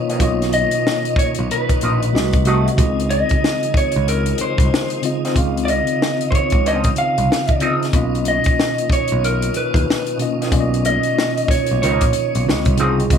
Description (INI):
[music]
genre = R&B, neo-soul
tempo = 93 BPM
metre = 4/4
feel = swing 63% on 16ths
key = Db major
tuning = A4 = 441 Hz
[part]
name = mellow tine electric piano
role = accompaniment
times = 0.0-13.2 s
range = Cb3 to F5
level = -22 LUFS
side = left 1 dB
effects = medium stereo tremolo
[part]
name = tonewheel organ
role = sustained chords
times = 0.0-13.1 s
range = C3 to Eb4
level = -29 LUFS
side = right 1 dB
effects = slow rotary speaker, overdrive, chorus vibrato
[part]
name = vintage hollow-body jazz guitar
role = second line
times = 0.1-13.0 s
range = F3 to Eb4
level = -23 LUFS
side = right 1 dB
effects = wah
[part]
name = compact cocktail drum kit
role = drums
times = 0.1-13.2 s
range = hi-hat, kick drum, snare drum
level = -19 LUFS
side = equal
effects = none
[part]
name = picked electric bass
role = bass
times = 0.2-13.2 s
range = Bb1 to Eb2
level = -20 LUFS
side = equal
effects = none
[part]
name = electric guitar through a small old amp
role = melody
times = 0.5-12.7 s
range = Bb4 to F5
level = -21 LUFS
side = right 1 dB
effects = spring reverb
[sound]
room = light reverb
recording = small room ambience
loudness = -15 LUFS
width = side -7 dB against mid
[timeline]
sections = 0.0-13.1 A section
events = none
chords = 0.0 Cbmaj9#11; 2.1 Cdim7; 2.8 Dbmaj9; 7.9 Cbmaj9#11; 12.5 Dbmaj9